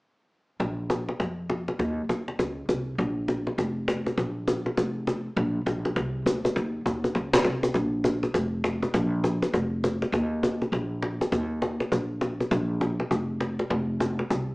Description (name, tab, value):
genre	country, western swing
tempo	201 BPM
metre	4/4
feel	swing 62% on 8ths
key	unclear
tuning	A4 = 440 Hz
part	upright bass	bass	0.6-14.5 s	F1 to F2	-29 LUFS	equal	none
part	cajon	drums	0.6-14.3 s	none	-26 LUFS	equal	none
room	moderate studio reverb, RT60 0.8 s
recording	band playing live in one room, small speaker sound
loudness	-25 LUFS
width	side -24 dB against mid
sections	0.6-5.4 A section; 5.4-14.5 B section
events	none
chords	none